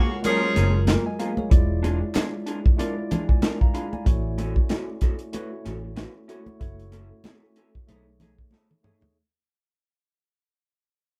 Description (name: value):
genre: lush 1970s-style soul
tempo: 94 BPM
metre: 4/4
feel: swing 58% on 16ths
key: unclear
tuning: A4 = 440 Hz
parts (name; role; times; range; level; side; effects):
- tine electric piano; accompaniment; 0.0-9.2 s; F#3 to B5; -33 LUFS; equal; none
- electric guitar through a small old amp; riff; 0.0-9.1 s; A3 to B4; -35 LUFS; equal; none
- clear horn section; stabs; 0.0-0.8 s; C#3 to G#4; -27 LUFS; equal; none
- warm soul drum kit; drums; 0.2-9.1 s; hi-hat, kick drum, snare drum, toms; -22 LUFS; equal; none
- congas; percussion; 0.2-9.1 s; none; -34 LUFS; equal; none
- vintage muted fingered electric bass; bass; 0.6-8.4 s; E1 to B1; -28 LUFS; equal; none
- group handclap; percussion; 0.9-3.6 s; none; -40 LUFS; equal; none
room: light reverb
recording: band playing live in one room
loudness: -23 LUFS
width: mono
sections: 0.0-9.2 A section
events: fade-out 0.0-9.2; drum fill 8.5-9.2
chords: 0.0 F#maj9; 1.5 E7b9; 4.1 A6; 6.6 F#m7; 7.9 B13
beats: 0.24 0.88 | 1.51 2.15 2.79 3.42 | 4.06 4.70 5.33 5.97 | 6.61 7.25 7.88 8.52